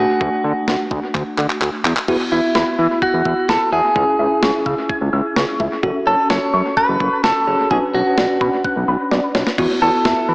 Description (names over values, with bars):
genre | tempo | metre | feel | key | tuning
synth-pop | 128 BPM | 4/4 | straight | unclear | A4 = 445 Hz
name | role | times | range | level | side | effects
clean electric guitar | melody | 0.0-10.3 s | E4 to C#5 | -18 LUFS | equal | dub echo
bell-like tine electric piano | accompaniment | 0.0-10.3 s | A3 to B4 | -22 LUFS | equal | fast stereo tremolo, dub echo
fat analog bass | bass | 0.0-10.3 s | F#1 to E3 | -20 LUFS | equal | none
clean 12-bit digital drum machine | drums | 0.2-10.2 s | crash cymbal, handclaps, kick drum, snare drum | -22 LUFS | equal | dub echo
warbly dusty pluck | arpeggios | 2.1-10.3 s | F#4 to G#6 | -22 LUFS | equal | chorus, dub echo
room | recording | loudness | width
moderate echo chamber reverb, RT60 1.9 s, digital ambience | echo-heavy mix, small speaker sound | -15 LUFS | side -25 dB against mid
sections
0.0-2.1 A section; 2.1-10.3 B section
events
drum fill 1.1-2.1, 9.1-9.6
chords
0.0 D; 2.1 Esus2; 4.0 C#m; 5.8 F#m; 7.7 Bmadd9; 9.6 Esus2